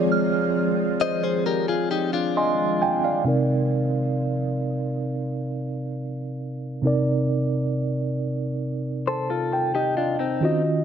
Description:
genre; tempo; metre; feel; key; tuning
R&B; 67 BPM; 4/4; straight; C minor; A4 = 440 Hz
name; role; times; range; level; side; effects
mellow tine electric piano; accompaniment; 0.0-10.8 s; C3 to C6; -23 LUFS; right 2 dB; fast stereo tremolo, low-pass filter
ethereal airy pad; sustained chords; 0.0-3.2 s; Eb3 to C4; -31 LUFS; left 2 dB; ensemble chorus, built-in reverb, phaser
soft synth bell; texture; 0.1-2.1 s; F6; -32 LUFS; right 6 dB; chorus, phaser, tape echo
direct-recorded clean electric guitar; arpeggios; 1.0-3.2, 9.1-10.6 s; C4 to Eb5; -25 LUFS; left 7 dB; low-pass filter, tape echo
room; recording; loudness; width
light reverb, digital ambience; none; -22 LUFS; side -8 dB against mid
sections
0.0-3.3 A section; 3.3-10.8 B section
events
tine electric piano fill 1.9-3.3, 8.6-10.4; filter sweep 3.3-10.8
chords
0.0 Fm7; 3.3 Cm7

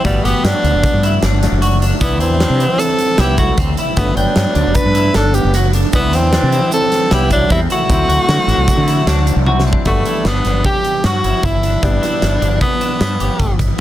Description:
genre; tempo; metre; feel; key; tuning
progressive instrumental, band music in an uneven meter; 153 BPM; 5/4; straight; G major; A4 = 440 Hz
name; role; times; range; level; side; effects
edgy tenor saxophone; melody; 0.0-13.6 s; G3 to B4; -18 LUFS; equal; digital delay
bright concert grand piano; accompaniment; 0.0-13.8 s; E3 to B4; -25 LUFS; left 4 dB; none
clean electric guitar; arpeggios; 0.0-13.5 s; C4 to G5; -22 LUFS; left 1 dB; analog chorus
huge arena drum kit; drums; 0.0-13.7 s; hi-hat, kick drum, snare drum, toms; -18 LUFS; equal; none
mellow fretless electric bass; bass; 0.1-13.7 s; F#1 to D3; -16 LUFS; equal; none
breathy trombone; second line; 2.0-9.4 s; D3 to D4; -22 LUFS; right 3 dB; none
egg shaker; percussion; 2.0-9.8 s; none; -33 LUFS; right 5 dB; none
room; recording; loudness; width
light reverb; dense, heavily limited modern master; -12 LUFS; side -13 dB against mid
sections
0.0-9.9 A section; 9.9-13.8 B section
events
drum fill 9.5-9.9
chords
0.0 Gmaj7; 2.0 Cmaj7; 4.0 Gmaj7; 5.9 Cmaj7; 7.9 D7; 9.9 G

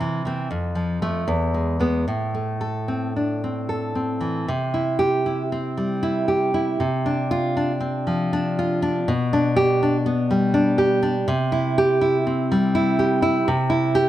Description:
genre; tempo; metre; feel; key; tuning
romantic piece for solo classical guitar; 73-83 BPM; 3/4; rubato; A minor, C major from 4.5 s; A4 = 440 Hz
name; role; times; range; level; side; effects
nylon-string guitar; solo; 0.0-14.1 s; E2 to A4; -19 LUFS; equal; none
room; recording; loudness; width
light reverb; none; -19 LUFS; side -13 dB against mid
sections
0.0-4.5 A section; 4.5-14.1 B section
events
none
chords
0.0 C; 0.5 F; 1.3 E; 2.1 Am; 4.5 C; 6.8 Dm7/C; 9.1 G/B; 11.3 C

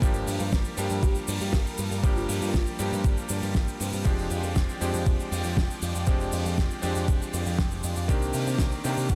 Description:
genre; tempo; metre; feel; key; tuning
nu-disco, nu disco; 119 BPM; 4/4; straight; F dorian; A4 = 438 Hz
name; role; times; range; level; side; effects
bright electric grand piano; accompaniment; 0.0-9.2 s; Eb3 to G4; -34 LUFS; equal; digital delay
bright studio string section; sustained chords; 0.0-9.2 s; G3 to G5; -43 LUFS; equal; none
picked electric bass with an envelope filter; bass; 0.0-9.2 s; F1 to C3; -32 LUFS; equal; sidechain pumping
damped 70s drum kit; drums; 0.0-9.2 s; hi-hat, shaker, snare drum; -36 LUFS; equal; studio reverb
electronic kick drum; drums; 0.0-9.2 s; none; -27 LUFS; equal; studio reverb
unison lead; melody; 1.0-4.0, 9.1-9.2 s; C4 to G4; -40 LUFS; equal; digital delay
room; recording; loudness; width
small room ambience; none; -27 LUFS; mono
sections
0.0-9.2 A section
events
none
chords
0.0 Gm7; 4.1 Fm69; 8.1 Cm9

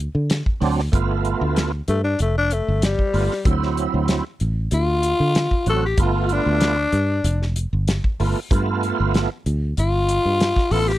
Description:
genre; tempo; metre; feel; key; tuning
straight-eighth soul blues; 95 BPM; 4/4; straight; unclear; A4 = 438 Hz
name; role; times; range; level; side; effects
fingered electric bass; bass; 0.0-11.0 s; F1 to D3; -21 LUFS; equal; none
warm soul drum kit; drums; 0.3-11.0 s; hi-hat, kick drum, snare drum; -22 LUFS; equal; none
overdriven tonewheel organ; accompaniment; 0.6-10.9 s; F#3 to F#4; -23 LUFS; right 6 dB; chorus vibrato, slow rotary speaker
growling tenor saxophone; melody; 1.9-11.0 s; G3 to A4; -21 LUFS; left 3 dB; none
room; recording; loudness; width
little or no reverb; dry, close 1970s-style studio recording; -18 LUFS; side -15 dB against mid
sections
0.0-11.0 A section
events
tenor saxophone solo 0.0-11.0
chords
0.0 D7; 0.9 G7; 3.5 D7; 6.0 G7

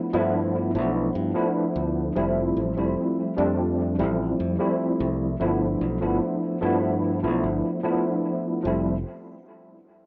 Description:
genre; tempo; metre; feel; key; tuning
vaporwave; 74 BPM; 4/4; straight; F lydian; A4 = 440 Hz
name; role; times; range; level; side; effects
tine electric piano; accompaniment; 0.0-9.0 s; F3 to E4; -26 LUFS; equal; overdrive, fast tremolo, ensemble chorus, tape echo
fingered electric bass; bass; 0.1-9.0 s; F1 to G2; -31 LUFS; equal; low-pass filter
room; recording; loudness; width
moderate studio reverb, RT60 0.5 s; rough home demo mix, cassette tape, nothing above 7.5 kHz; -25 LUFS; mono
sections
0.0-8.6 A section; 8.6-10.1 B section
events
none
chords
0.0 G13; 2.2 Fmaj9; 5.4 G13; 8.6 Fmaj9

